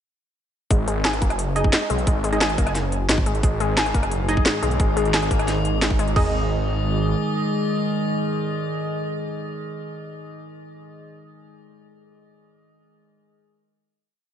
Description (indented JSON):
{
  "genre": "dark technical drum and bass",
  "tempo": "176 BPM",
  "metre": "4/4",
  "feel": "straight",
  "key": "unclear",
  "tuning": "A4 = 441 Hz",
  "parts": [
    { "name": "analog pluck", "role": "arpeggios", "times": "0.7-6.3 s", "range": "G#3 to G#4", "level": "-27 LUFS", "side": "left 2 dB", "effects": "chorus, vintage 12-bit sampler grit, sidechain pumping, diffuse ambient delay" },
    { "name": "wide detuned saw bass", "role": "bass", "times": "0.7-7.1 s", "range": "F#1 to B1", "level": "-24 LUFS", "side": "equal", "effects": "chorus, overdrive" },
    { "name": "drum and bass drum kit", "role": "drums", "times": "0.7-6.2 s", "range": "crash cymbal, kick drum, toms", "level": "-21 LUFS", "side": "equal", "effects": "none" },
    { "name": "drum and bass drum kit", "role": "drums", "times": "0.7-6.1 s", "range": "hi-hat, rim click, snare drum", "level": "-24 LUFS", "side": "equal", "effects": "none" },
    { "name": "filtered dub chord stab", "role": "stabs", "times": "1.6-10.3 s", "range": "D#4 to D#5", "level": "-28 LUFS", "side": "right 2 dB", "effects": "chorus, diffuse ambient delay" },
    { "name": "metallic inharmonic drone", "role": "sustained chords", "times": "4.1-9.6 s", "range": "G#2 to D#5", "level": "-26 LUFS", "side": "equal", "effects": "chorus, built-in reverb, sidechain pumping" }
  ],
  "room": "moderate lush hall reverb, RT60 1.9 s",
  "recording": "dreamy mix soaked in reverb, nothing above 10.7 kHz",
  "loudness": "-19 LUFS",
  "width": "side -9 dB against mid",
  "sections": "0.7-6.2 drop; 6.2-8.9 final chord",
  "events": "drop 0.7-6.2",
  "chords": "0.7 G#5"
}